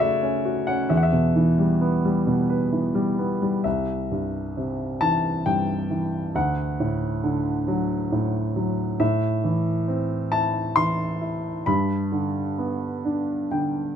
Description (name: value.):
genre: classical, lyrical solo piano.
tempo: 44 BPM (dotted quarters).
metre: 6/8.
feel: rubato.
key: E dorian.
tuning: A4 = 440 Hz.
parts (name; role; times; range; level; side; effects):
warm grand piano; solo; 0.0-14.0 s; C2 to C6; -21 LUFS; equal; none.
room: light reverb.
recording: close, detailed microphones.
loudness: -21 LUFS.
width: side -8 dB against mid.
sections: 0.0-3.7 A section; 3.7-14.0 B section.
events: grand piano fill 13.0-14.0.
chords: 0.0 F#m; 0.9 Em; 3.7 C; 6.4 D; 9.0 Am; 11.7 G.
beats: | 0.90 2.27 | 3.65 5.02 | 6.35 7.68 | 9.00 10.32 | 11.67 13.05.